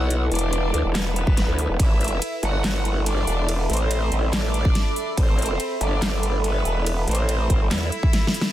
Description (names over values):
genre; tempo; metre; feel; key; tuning
heavy wobble dubstep; 142 BPM; 4/4; half-time; unclear; A4 = 440 Hz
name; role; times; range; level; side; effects
clear chamber violin section; melody; 0.0-8.5 s; B3 to F#5; -30 LUFS; equal; tape echo
growl bass; bass; 0.0-7.9 s; E1 to E2; -22 LUFS; equal; chorus, overdrive
warbly tape-like pad; texture; 0.0-8.5 s; E4 to B5; -30 LUFS; equal; chorus, built-in reverb, sidechain pumping
dubstep drum kit; drums; 0.1-8.5 s; handclaps, hi-hat, ride cymbal, snare drum; -28 LUFS; equal; none
electronic kick drum; drums; 1.3-1.9, 4.7-8.1 s; none; -19 LUFS; equal; none
room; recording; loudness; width
little or no reverb; dense, heavily limited modern master; -20 LUFS; side -13 dB against mid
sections
0.0-8.5 A section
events
drum fill 8.1-8.5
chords
0.0 E5; 1.8 Am